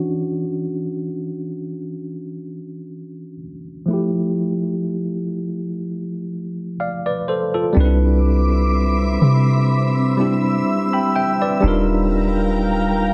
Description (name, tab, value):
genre	contemporary R&B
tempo	62 BPM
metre	4/4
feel	swing 54% on 16ths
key	C major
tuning	A4 = 440 Hz
part	tine electric piano	accompaniment	0.0-13.1 s	E3 to B5	-23 LUFS	equal	overdrive
part	glassy FM pad	sustained chords	8.2-13.1 s	C4 to E6	-25 LUFS	equal	ensemble chorus, built-in reverb
part	soft 808-style bass	bass	7.8-13.1 s	Eb1 to C3	-20 LUFS	equal	none
room	moderate recital hall reverb, RT60 1.3 s, digital ambience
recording	low-pass filter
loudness	-20 LUFS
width	mono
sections	0.0-7.8 A section; 7.8-13.1 B section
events	filter sweep 0.0-7.8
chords	0.0 Dmaj9; 3.9 Fmaj9; 7.8 Cmaj9; 11.6 Ebmaj9